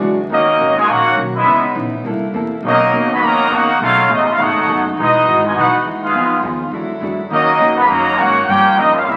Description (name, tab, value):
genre	jazz, big band swing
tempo	205 BPM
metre	4/4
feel	swing 62% on 8ths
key	Eb minor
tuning	A4 = 440 Hz
part	vintage hollow-body jazz guitar	accompaniment	0.0-9.2 s	G2 to A4	-26 LUFS	equal	none
part	warm saxophone section	sustained chords	0.0-9.2 s	B2 to F#4	-28 LUFS	equal	none
part	upright bass	bass	0.0-9.2 s	E1 to Ab2	-29 LUFS	equal	none
part	clear trumpet section	melody	0.3-9.2 s	Cb4 to B5	-18 LUFS	equal	none
part	muted trombone section	second line	0.3-9.2 s	B2 to G4	-17 LUFS	equal	none
room	wet large studio reverb, RT60 0.9 s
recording	very old 78 rpm record, vinyl crackle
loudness	-15 LUFS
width	mono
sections	0.3-9.2 A section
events	none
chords	0.3 Ebm7; 1.5 Dbm9; 2.0 C13; 2.6 Bmaj9; 3.8 B13; 5.0 Emaj9; 6.1 Fm7b5; 6.7 E9; 7.3 Ebm7; 8.5 Gm7b5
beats	0.00 | 0.29 0.58 0.88 1.17 | 1.46 1.75 2.05 2.34 | 2.63 2.92 3.22 3.51 | 3.80 4.09 4.39 4.68 | 4.97 5.26 5.56 5.85 | 6.14 6.43 6.73 7.02 | 7.31 7.60 7.90 8.19 | 8.48 8.77 9.07